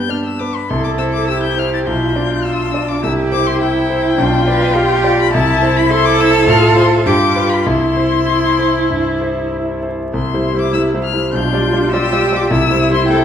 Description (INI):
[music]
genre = quick classical-period movement for piano quartet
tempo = 96-106 BPM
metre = 4/4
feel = rubato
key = C major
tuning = A4 = 440 Hz
[part]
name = warm violin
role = melody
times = 0.0-13.2 s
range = G5 to A6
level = -19 LUFS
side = left 9 dB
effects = none
[part]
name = rich cello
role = second line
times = 0.0-13.2 s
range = D4 to B4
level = -18 LUFS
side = right 3 dB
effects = none
[part]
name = clear concert grand piano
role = accompaniment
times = 0.0-13.2 s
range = B1 to D5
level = -16 LUFS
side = equal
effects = none
[part]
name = rich viola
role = accompaniment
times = 0.0-13.2 s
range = B3 to F4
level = -19 LUFS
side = right 1 dB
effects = none
[sound]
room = wet recital hall reverb, RT60 1.5 s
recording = vinyl crackle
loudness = -12 LUFS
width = side -8 dB against mid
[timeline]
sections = 0.0-10.1 A section; 10.1-13.2 A section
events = none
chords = 0.0 G; 0.7 C; 1.9 G7/B; 3.0 C; 4.2 G7/B; 5.3 C; 6.5 F/A; 7.1 G7; 7.7 C; 11.3 G7/B; 12.5 C